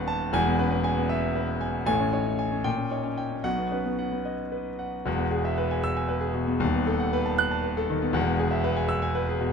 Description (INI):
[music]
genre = classical, virtuoso piano study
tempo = 78 BPM (dotted quarters)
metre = 6/8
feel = rubato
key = E major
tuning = A4 = 440 Hz
[part]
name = clear grand piano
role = solo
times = 0.0-9.5 s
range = D#1 to F#6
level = -24 LUFS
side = equal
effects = none
[sound]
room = light reverb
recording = close, detailed microphones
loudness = -24 LUFS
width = side -6 dB against mid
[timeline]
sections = 0.0-5.1 A section; 5.1-9.5 B section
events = none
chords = 0.3 E; 1.9 Amaj7; 2.6 A#m6; 3.5 B; 5.1 E; 6.6 B7/D#; 8.2 E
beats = | 0.34 1.10 | 1.88 2.65 | 3.45 4.26 | 5.07 5.84 | 6.61 7.39 | 8.15 8.91